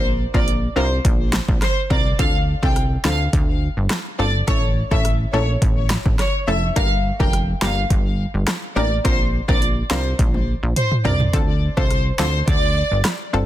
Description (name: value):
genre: dancehall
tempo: 105 BPM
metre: 4/4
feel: straight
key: D minor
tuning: A4 = 442 Hz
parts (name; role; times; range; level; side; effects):
- analog pluck; accompaniment; 0.0-13.5 s; A3 to Bb4; -26 LUFS; left 2 dB; chorus
- plucky analog bass; bass; 0.0-13.5 s; F1 to D2; -21 LUFS; equal; none
- warm studio violin section; melody; 0.3-12.9 s; C5 to G5; -24 LUFS; equal; ping-pong delay
- deep house drum kit; drums; 0.3-13.2 s; handclaps, hi-hat, kick drum, rim click, snare drum, toms; -20 LUFS; equal; none
room: little or no reverb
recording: dense, heavily limited modern master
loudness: -17 LUFS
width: side -13 dB against mid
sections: 0.0-11.3 A section; 11.3-13.5 B section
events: drum fill 10.2-11.3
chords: 0.0 Bbadd9; 2.2 Dm7; 4.5 A; 6.8 Gm; 9.0 Bbadd9; 11.3 Dm7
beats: 0.48 1.05 1.62 | 2.19 2.76 3.33 3.91 | 4.48 5.05 5.62 6.19 | 6.76 7.33 7.91 8.48 | 9.05 9.62 10.19 10.76 | 11.34 11.91 12.48 13.05